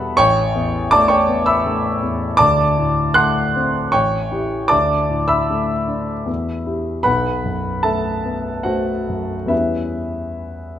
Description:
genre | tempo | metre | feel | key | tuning
classical, impressionist solo piano | 68-82 BPM | 3/4 | rubato | E minor | A4 = 440 Hz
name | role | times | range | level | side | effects
warm grand piano | solo | 0.0-10.8 s | A1 to F#6 | -16 LUFS | equal | none
room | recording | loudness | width
moderate recital hall reverb, RT60 1.6 s | minimal, uncompressed stereo recording | -16 LUFS | side -10 dB against mid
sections
0.0-10.8 A section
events
none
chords
0.2 A9; 2.4 D7; 3.9 A7; 4.7 Dsus2; 6.3 Em; 7.1 B7sus4; 9.5 Em6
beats
| 0.17 0.91 1.65 | 2.40 3.17 3.93 | 4.71 5.50 6.28 | 7.06 7.85 8.66 | 9.51 10.39

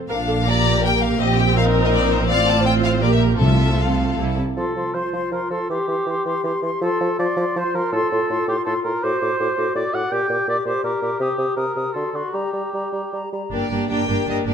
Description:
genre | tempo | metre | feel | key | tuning
quick classical-period movement for symphony orchestra | 161 BPM | 3/4 | rubato | F major, G minor from 9.0 s | A4 = 440 Hz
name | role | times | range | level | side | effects
rich chamber violin section | melody | 0.1-4.2, 13.5-14.5 s | C5 to Bb5 | -24 LUFS | left 4 dB | none
rich chamber viola section | accompaniment | 0.1-4.4, 13.5-14.5 s | G3 to Bb4 | -23 LUFS | right 2 dB | none
rich chamber cello section | bass | 0.1-4.4, 13.5-14.5 s | G2 to C3 | -25 LUFS | right 3 dB | none
rich chamber double bass section | bass | 0.1-4.4, 13.5-14.5 s | G1 to C2 | -22 LUFS | right 3 dB | none
rich chamber violin section | second line | 0.5-4.4, 13.5-14.5 s | G4 to D5 | -23 LUFS | left 6 dB | none
timpani | percussion | 3.4-4.0 s | C3 | -20 LUFS | left 1 dB | none
bright concert flute | second line | 4.6-13.5 s | Bb5 to Eb6 | -28 LUFS | left 2 dB | none
dark cor anglais | second line | 4.6-13.3 s | F#4 to G5 | -25 LUFS | right 2 dB | none
warm clarinet | second line | 4.6-13.5 s | F4 to G4 | -27 LUFS | left 4 dB | none
mellow bassoon | accompaniment | 4.6-13.4 s | A2 to G3 | -26 LUFS | right 1 dB | none
room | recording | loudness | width
light reverb | close, detailed microphones | -18 LUFS | side -7 dB against mid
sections
0.0-4.6 A section; 4.6-13.5 B section; 13.5-14.5 C section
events
none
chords
0.1 Bb; 1.2 Cm7/Bb; 2.3 F/A; 3.0 Gm/Bb; 3.4 F/C; 4.2 C; 4.6 F; 5.7 C/E; 6.8 F; 7.9 F/A; 10.1 Gm/Bb; 11.2 Cm; 12.0 D7; 12.3 Gm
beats
| 0.09 0.46 0.83 | 1.20 1.56 1.93 | 2.29 2.65 3.03 | 3.41 3.80 4.19 | 4.58 4.96 5.33 | 5.70 6.08 6.45 | 6.82 7.20 7.57 | 7.93 8.30 8.66 | 9.03 9.39 9.76 | 10.12 10.49 10.85 | 11.21 11.58 11.96 | 12.35 12.75 13.13 | 13.52 13.90 14.27

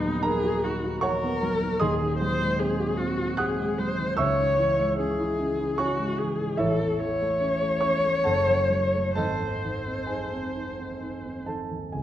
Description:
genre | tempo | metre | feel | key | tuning
classical, romantic duo for viola and grand piano | 64-78 BPM | 3/4 | rubato | unclear | A4 = 440 Hz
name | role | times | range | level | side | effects
rich viola | melody | 0.0-11.4 s | D#4 to C#5 | -26 LUFS | left 2 dB | none
dark baby grand piano | accompaniment | 0.0-12.0 s | D#1 to F#6 | -26 LUFS | right 1 dB | none
room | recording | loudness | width
wet recital hall reverb, RT60 1.4 s | dark, warm production | -23 LUFS | side -12 dB against mid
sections
0.0-11.9 A section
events
none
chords
0.0 B/D#; 1.8 G#7/D#; 4.2 C#m; 6.6 A; 8.3 F#m; 9.2 G#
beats
0.25 1.03 | 1.81 2.59 3.39 | 4.19 4.99 5.79 | 6.59 7.41 8.26 | 9.16 10.09 11.01 | 11.94

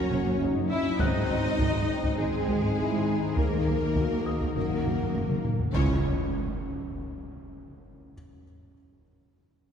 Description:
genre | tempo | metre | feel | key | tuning
cinematic, hybrid orchestral and electronic film score | 101 BPM | 4/4 | straight | C# dorian | A4 = 439 Hz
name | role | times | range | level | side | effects
rich symphonic violin section | melody | 0.0-6.1 s | G#4 to E5 | -36 LUFS | left 3 dB | none
rich symphonic violin section | second line | 0.0-6.1 s | G#3 to C#5 | -37 LUFS | left 3 dB | none
rich symphonic viola section | accompaniment | 0.0-6.1 s | G#3 to E4 | -36 LUFS | right 1 dB | none
glassy FM pad | sustained chords | 0.0-6.1 s | D#3 to C#5 | -34 LUFS | left 2 dB | ensemble chorus, built-in reverb
warm French horn section | sustained chords | 0.0-6.0 s | G#3 to F#4 | -34 LUFS | left 3 dB | none
harp-like synth pluck | arpeggios | 0.0-5.7 s | D#3 to G#4 | -36 LUFS | right 1 dB | none
felt-muted upright piano | texture | 0.0-5.8 s | C#6 to F#6 | -44 LUFS | left 1 dB | digital delay
mellow tuba | bass | 0.1-6.0 s | F#1 to D#2 | -35 LUFS | right 2 dB | none
rich symphonic cello section | bass | 0.1-6.1 s | D#2 to C#3 | -34 LUFS | right 2 dB | none
warm symphonic double bass section | bass | 0.1-6.1 s | F#1 to D#2 | -35 LUFS | right 2 dB | none
solo taiko drums | drums | 1.0-6.9 s | none | -32 LUFS | equal | none
impact | sound effects | 5.7-8.1 s | none | -35 LUFS | equal | none
room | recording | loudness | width
wet concert hall reverb, RT60 2.5 s | heard from further back in the room | -24 LUFS | side -8 dB against mid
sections
0.0-5.7 A section; 5.7-8.1 B section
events
drum fill 5.2-5.7; impact 5.7-8.1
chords
0.0 F#5; 1.0 G#; 3.4 D#m; 4.6 F#; 5.7 C#m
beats
0.40 | 0.99 1.59 2.18 2.78 | 3.37 3.96 4.56 5.15 | 5.75 6.34 6.93 7.53

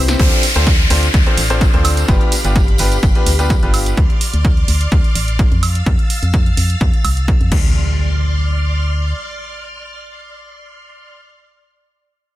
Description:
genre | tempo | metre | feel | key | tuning
piano house | 127 BPM | 4/4 | swing 53% on 16ths | D dorian | A4 = 442 Hz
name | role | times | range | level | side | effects
string machine, violins | sustained chords | 0.0-11.1 s | C4 to A6 | -26 LUFS | equal | ensemble chorus, sidechain pumping
bright grand piano | riff | 0.0-3.9 s | B3 to C5 | -21 LUFS | left 2 dB | sidechain pumping, tape echo
organ-like FM bass | bass | 0.0-9.1 s | G1 to F2 | -16 LUFS | equal | tube saturation, sidechain pumping
punchy analog drum machine | drums | 0.1-7.6 s | crash cymbal, hi-hat, snare drum, woodblock | -22 LUFS | right 4 dB | overdrive
tambourine | percussion | 0.1-4.0 s | none | -28 LUFS | equal | none
electronic kick drum | drums | 0.2-7.6 s | none | -15 LUFS | equal | overdrive
downlifter and impact | sound effects | 0.2-4.0, 7.5-11.2 s | none | -22 LUFS | equal | none
room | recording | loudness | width
little or no reverb | none | -12 LUFS | side -15 dB against mid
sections
0.2-7.8 A section; 7.8-11.5 B section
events
drum fill 0.0; band accent 0.1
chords
0.2 Dm7; 2.1 G7; 4.0 Dm7; 5.6 Fmaj7; 7.5 Dm7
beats
| 0.19 0.67 1.14 1.61 | 2.08 2.56 3.03 3.50 | 3.97 4.45 4.92 5.39 | 5.86 6.34 6.81 7.28 | 7.75 8.22 8.70 9.17 | 9.64 10.12 10.59 11.06

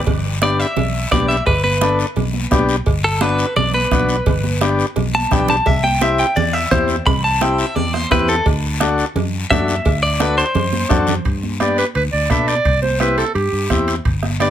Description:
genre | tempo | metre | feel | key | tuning
latin, cumbia | 172 BPM | 4/4 | straight | G major | A4 = 442 Hz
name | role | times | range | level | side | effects
fingered electric bass | bass | 0.0-14.5 s | G1 to B2 | -21 LUFS | equal | none
bombo | percussion | 0.1-14.5 s | none | -21 LUFS | right 1 dB | none
congas | percussion | 0.1-14.5 s | none | -25 LUFS | right 4 dB | none
cowbell and timbales | percussion | 0.1-14.5 s | none | -27 LUFS | right 4 dB | none
guiro | percussion | 0.1-14.5 s | none | -29 LUFS | left 6 dB | none
direct-recorded clean electric guitar | melody | 0.4-11.1 s | A4 to B5 | -19 LUFS | equal | spring reverb
combo organ | accompaniment | 0.4-14.5 s | B3 to A4 | -19 LUFS | left 3 dB | none
breathy clarinet | second line | 11.6-14.5 s | G4 to E5 | -18 LUFS | right 3 dB | none
room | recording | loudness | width
light reverb | none | -14 LUFS | side -10 dB against mid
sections
0.1-11.3 A section; 11.3-14.5 B section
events
clean electric guitar solo 0.1-11.3; drum fill 5.1-5.7, 10.7-11.3; clarinet solo 11.3-14.5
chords
0.1 G; 5.7 C; 8.5 D7; 11.3 G; 12.7 C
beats
| 0.07 0.42 0.77 1.12 | 1.47 1.82 2.17 2.52 | 2.87 3.22 3.57 3.92 | 4.27 4.62 4.97 5.32 | 5.67 6.01 6.37 6.71 | 7.06 7.41 7.76 8.11 | 8.46 8.81 9.16 9.51 | 9.86 10.21 10.56 10.91 | 11.26 11.61 11.96 12.30 | 12.65 13.01 13.36 13.71 | 14.06 14.41

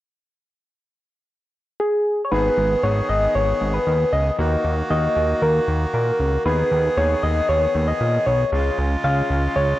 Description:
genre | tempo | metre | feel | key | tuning
synth-pop | 116 BPM | 4/4 | straight | G# minor | A4 = 441 Hz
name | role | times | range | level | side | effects
soft struck synth lead | melody | 1.8-9.8 s | G#4 to E#5 | -20 LUFS | left 1 dB | chorus, analog delay
warm concert grand piano | accompaniment | 2.3-9.7 s | A#3 to G#4 | -28 LUFS | right 1 dB | none
accordion | sustained chords | 2.3-9.8 s | C#3 to G#4 | -28 LUFS | right 1 dB | none
fat analog bass | bass | 2.3-9.7 s | G#1 to A#2 | -21 LUFS | equal | none
room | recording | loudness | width
light reverb, small room ambience | dry, gritty hardware recording, transformer saturation | -18 LUFS | side -15 dB against mid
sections
0.2-2.3 A section; 2.3-9.8 B section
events
none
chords
0.2 N.C.; 2.3 G#m; 4.4 D#m; 6.5 G#m/D#; 8.5 C#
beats
| 0.25 0.77 1.28 1.80 | 2.32 2.83 3.35 3.87 | 4.39 4.90 5.42 5.94 | 6.46 6.97 7.49 8.01 | 8.52 9.04 9.56

